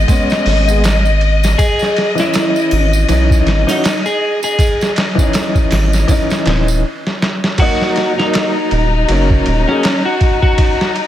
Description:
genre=trip hop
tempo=80 BPM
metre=4/4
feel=swing 58% on 16ths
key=unclear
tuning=A4 = 440 Hz
part: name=clear upright piano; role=accompaniment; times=0.0-9.8 s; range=E3 to D#5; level=-19 LUFS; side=left 1 dB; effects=tremolo, vintage 12-bit sampler grit, tape echo
part: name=rich studio string section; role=sustained chords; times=0.0-11.1 s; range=D#4 to D#5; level=-20 LUFS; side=left 5 dB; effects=none
part: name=round analog bass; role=bass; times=0.0-9.7 s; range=D#1 to B1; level=-13 LUFS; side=equal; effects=none
part: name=trip hop sampler-style drum kit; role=drums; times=0.1-11.1 s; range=crash cymbal, hi-hat, kick drum, ride cymbal, snare drum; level=-16 LUFS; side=equal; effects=none
part: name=tambourine and triangle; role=percussion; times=0.1-6.8 s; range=none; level=-29 LUFS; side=right 5 dB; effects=none
part: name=electric slide guitar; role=melody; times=1.6-10.9 s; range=C#4 to G#4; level=-18 LUFS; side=right 1 dB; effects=tape echo
room=light reverb, digital ambience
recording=none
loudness=-11 LUFS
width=side -12 dB against mid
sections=0.0-7.6 A section; 7.6-11.1 B section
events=stop 6.8-7.6; drum fill 7.0-7.6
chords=0.0 G#m; 1.6 C#madd9/G#; 7.6 D#m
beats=0.09 0.83 | 1.58 2.33 3.08 3.83 | 4.58 5.33 6.08 6.83 | 7.58 8.34 9.09 9.84 | 10.59

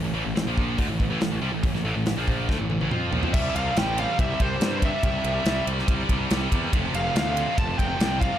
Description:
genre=heavy metal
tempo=141 BPM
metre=4/4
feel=straight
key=unclear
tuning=A4 = 440 Hz
part: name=scooped high-gain guitar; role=riff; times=0.0-8.4 s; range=F2 to F4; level=-27 LUFS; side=right 1 dB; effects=distortion
part: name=fuzz picked electric bass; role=bass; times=0.0-8.3 s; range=F1 to G2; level=-28 LUFS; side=equal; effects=overdrive
part: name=modern studio drum kit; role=drums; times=0.4-8.3 s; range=crash cymbal, hi-hat, kick drum, ride cymbal, snare drum, toms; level=-26 LUFS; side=equal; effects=none
part: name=high-gain lead guitar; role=melody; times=3.3-8.4 s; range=C5 to A5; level=-28 LUFS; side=equal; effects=distortion
room=little or no reverb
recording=dark, warm production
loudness=-22 LUFS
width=side -11 dB against mid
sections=0.0-3.3 A section; 3.3-8.4 B section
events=drum fill 2.5-3.3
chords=0.0 Am; 3.3 C; 6.7 F5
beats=0.36 0.78 1.21 | 1.63 2.06 2.48 2.91 | 3.33 3.76 4.18 4.61 | 5.03 5.46 5.88 6.30 | 6.72 7.15 7.57 8.00

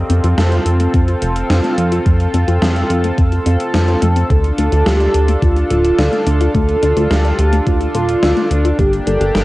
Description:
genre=synthwave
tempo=107 BPM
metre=4/4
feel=straight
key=unclear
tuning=A4 = 440 Hz
part: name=chorused pulse-width pad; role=sustained chords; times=0.0-9.4 s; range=Bb3 to A4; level=-19 LUFS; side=equal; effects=sidechain pumping, cassette tape
part: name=chorused synth bass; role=bass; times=0.0-9.4 s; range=D1 to F2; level=-15 LUFS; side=equal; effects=tube saturation
part: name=soft round pluck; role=arpeggios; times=0.1-9.4 s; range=A3 to D5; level=-25 LUFS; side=left 5 dB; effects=none
part: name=gated 80s digital drum machine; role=drums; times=0.1-9.4 s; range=hi-hat, snare drum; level=-22 LUFS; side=equal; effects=gated reverb, gated reverb snare, overdrive, cassette tape
part: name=electronic kick drum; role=drums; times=0.9-8.9 s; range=none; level=-16 LUFS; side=equal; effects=overdrive, cassette tape
part: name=warm velvety synth lead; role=melody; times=4.3-9.4 s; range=F4 to A4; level=-18 LUFS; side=right 1 dB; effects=chorus, analog delay
room=moderate spring reverb, RT60 2.4 s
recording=home recording on cassette, nothing above 10.4 kHz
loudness=-12 LUFS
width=side -18 dB against mid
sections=0.0-9.4 A section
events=none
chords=0.0 F; 4.3 Dm; 8.8 Gm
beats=0.38 0.94 1.50 | 2.06 2.62 3.18 3.74 | 4.30 4.86 5.42 5.99 | 6.55 7.11 7.67 8.23 | 8.79 9.35

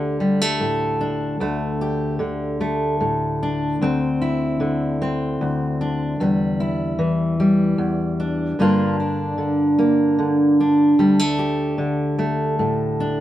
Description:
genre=folk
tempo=50 BPM (dotted quarters)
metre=6/8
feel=straight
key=unclear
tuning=A4 = 439 Hz
part: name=fingerpicked steel-string acoustic guitar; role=solo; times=0.0-13.2 s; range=D2 to G4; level=-18 LUFS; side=equal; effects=none
room=moderate stone room reverb, RT60 1.1 s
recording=band playing live in one room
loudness=-18 LUFS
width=side -13 dB against mid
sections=0.0-1.4 A section; 1.4-13.2 A section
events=none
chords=0.0 D5; 3.8 Cadd9/D; 6.2 Em7; 8.6 Gm7; 11.0 D5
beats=0.22 | 1.41 2.60 | 3.80 4.99 | 6.19 7.39 | 8.58 9.78 | 10.98 12.19

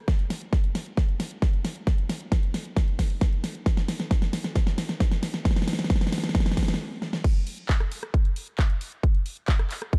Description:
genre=trance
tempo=134 BPM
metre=4/4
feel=straight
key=none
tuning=none
part: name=big-room dance drum kit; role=drums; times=0.1-10.0 s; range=crash cymbal, handclaps, hi-hat, rim click, snare drum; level=-32 LUFS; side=equal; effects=none
part: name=electronic kick drum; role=drums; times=0.1-10.0 s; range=none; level=-25 LUFS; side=equal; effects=none
room=light reverb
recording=dark, warm production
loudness=-26 LUFS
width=mono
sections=0.0-7.2 A section; 7.2-10.0 B section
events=build-up 0.0-7.2; drum fill 0.0-6.8, 7.0; stop 6.8-7.2; drop 7.2-10.0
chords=none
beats=| 0.08 0.53 0.97 1.42 | 1.87 2.32 2.77 3.21 | 3.66 4.11 4.56 5.00 | 5.45 5.90 6.35 6.80 | 7.24 7.69 8.14 8.59 | 9.04 9.48 9.93

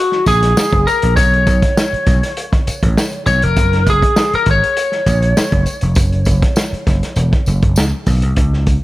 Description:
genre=funk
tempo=100 BPM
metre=4/4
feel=straight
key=unclear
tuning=A4 = 440 Hz
part: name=lightly driven lead guitar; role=melody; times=0.0-7.8 s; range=F#4 to C#5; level=-17 LUFS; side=left 1 dB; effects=none
part: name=vintage drum kit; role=drums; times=0.1-8.8 s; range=hi-hat, kick drum, snare drum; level=-16 LUFS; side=equal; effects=none
part: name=vintage slap bass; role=bass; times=0.3-8.8 s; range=E1 to C#2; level=-15 LUFS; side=equal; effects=none
part: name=tambourine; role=percussion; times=0.3-8.2 s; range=none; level=-29 LUFS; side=left 1 dB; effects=none
room=little or no reverb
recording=none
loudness=-12 LUFS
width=side -17 dB against mid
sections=0.0-8.4 A section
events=none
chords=0.0 F#add9; 1.2 Bsus2; 3.6 F#5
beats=0.56 | 1.16 1.76 2.37 2.96 | 3.57 4.17 4.77 5.37 | 5.97 6.57 7.17 7.77 | 8.37

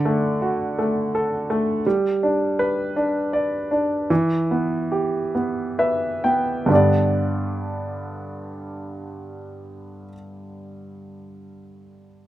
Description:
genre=pop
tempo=41-56 BPM (dotted quarters)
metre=6/8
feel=straight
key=G major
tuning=A4 = 440 Hz
part: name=warm concert grand piano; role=accompaniment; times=0.0-12.3 s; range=G2 to G5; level=-21 LUFS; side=right 1 dB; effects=none
room=light reverb, small room ambience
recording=rough home demo mix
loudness=-19 LUFS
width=side -14 dB against mid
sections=0.0-6.7 A section; 6.7-12.3 B section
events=slowing down 1.9-6.7; grand piano fill 5.3-6.7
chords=0.0 D; 1.9 G; 4.1 Em; 6.7 G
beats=0.78 | 1.86 2.96 | 4.10 5.34 | 6.70 8.15 | 9.59 11.03

